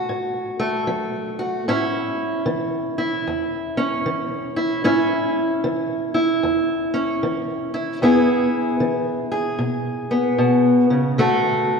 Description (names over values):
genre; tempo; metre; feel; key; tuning
blues; 76 BPM; 4/4; swing 64% on 8ths; A major; A4 = 439 Hz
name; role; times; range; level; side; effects
fingerpicked steel-string acoustic guitar; solo; 0.0-11.8 s; E2 to A4; -18 LUFS; equal; none
room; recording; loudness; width
wet church reverb, RT60 2.7 s; recorded in a church or concert hall; -18 LUFS; side -5 dB against mid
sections
0.0-11.8 A section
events
none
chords
0.0 D (rootless); 1.7 A; 8.0 E; 11.2 D